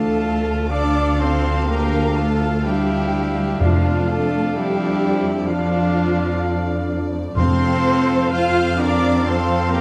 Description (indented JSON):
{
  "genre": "classical",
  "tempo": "63 BPM",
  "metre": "4/4",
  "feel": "rubato",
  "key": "D minor",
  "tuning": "A4 = 440 Hz",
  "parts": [
    { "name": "clear studio violin section", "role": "melody", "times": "0.0-9.8 s", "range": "D5 to F5", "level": "-34 LUFS", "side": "equal", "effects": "none" },
    { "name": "bright small flute group", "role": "second line", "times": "0.0-9.8 s", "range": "F5 to F6", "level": "-32 LUFS", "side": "equal", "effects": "none" },
    { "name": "clear oboe", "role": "second line", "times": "0.0-9.8 s", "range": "F5", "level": "-34 LUFS", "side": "equal", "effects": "none" },
    { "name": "warm clarinet", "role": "second line", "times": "0.0-9.8 s", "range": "C4 to D4", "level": "-31 LUFS", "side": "equal", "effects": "none" },
    { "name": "warm studio violin section", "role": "second line", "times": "0.0-9.8 s", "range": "F5 to F6", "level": "-36 LUFS", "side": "equal", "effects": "none" },
    { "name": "clear studio viola section", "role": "accompaniment", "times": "0.0-9.8 s", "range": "F4 to F5", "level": "-28 LUFS", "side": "equal", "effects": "none" },
    { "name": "clear French horn section", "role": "sustained chords", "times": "0.0-9.8 s", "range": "F3 to D4", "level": "-30 LUFS", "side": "equal", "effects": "none" },
    { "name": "concert harp", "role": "arpeggios", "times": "0.0-9.8 s", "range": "D3 to D5", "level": "-36 LUFS", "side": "equal", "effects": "none" },
    { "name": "clear trumpet", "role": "stabs", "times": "0.0-9.8 s", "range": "D4 to C5", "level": "-31 LUFS", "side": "equal", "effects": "none" },
    { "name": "rich studio double bass section", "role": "bass", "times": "0.0-9.8 s", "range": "D2 to F2", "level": "-25 LUFS", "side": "equal", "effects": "none" },
    { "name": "warm studio cello section", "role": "bass", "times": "0.0-9.8 s", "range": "F3 to F4", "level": "-26 LUFS", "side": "equal", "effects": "none" },
    { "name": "timpani", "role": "percussion", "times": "3.6-8.8 s", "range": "F2", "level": "-24 LUFS", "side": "equal", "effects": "none" }
  ],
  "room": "moderate scoring stage reverb, RT60 1.9 s",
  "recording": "dark, warm production",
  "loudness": "-19 LUFS",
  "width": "mono",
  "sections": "0.0-9.8 A section",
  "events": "none",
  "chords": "0.0 Dm; 3.6 Dm/F; 7.4 F",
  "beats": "0.71 1.68 2.65 | 3.61 4.56 5.48 6.42 | 7.36 8.32 9.26"
}